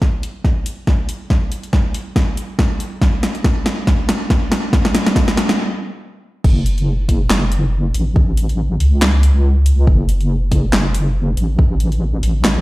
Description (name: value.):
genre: deep dubstep.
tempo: 140 BPM.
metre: 4/4.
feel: swing 55% on 16ths, half-time.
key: F# minor.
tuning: A4 = 440 Hz.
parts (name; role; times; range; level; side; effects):
deep house drum kit; drums; 0.0-12.5 s; crash cymbal, handclaps, hi-hat, snare drum; -19 LUFS; equal; overdrive.
electronic kick drum; drums; 0.0-11.7 s; none; -15 LUFS; equal; overdrive.
deep soft wobble bass; bass; 6.4-12.6 s; F#1 to C#2; -14 LUFS; equal; chorus.
room: moderate digital room reverb, RT60 1.3 s.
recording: played on a big sound system in a bare room, stone room reverb.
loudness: -14 LUFS.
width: side -19 dB against mid.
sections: 0.0-6.4 A section; 6.4-12.6 B section.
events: build-up 0.0-6.4; drum fill 0.0-5.6; stop 5.6-6.4; drop 6.4-12.6.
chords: none.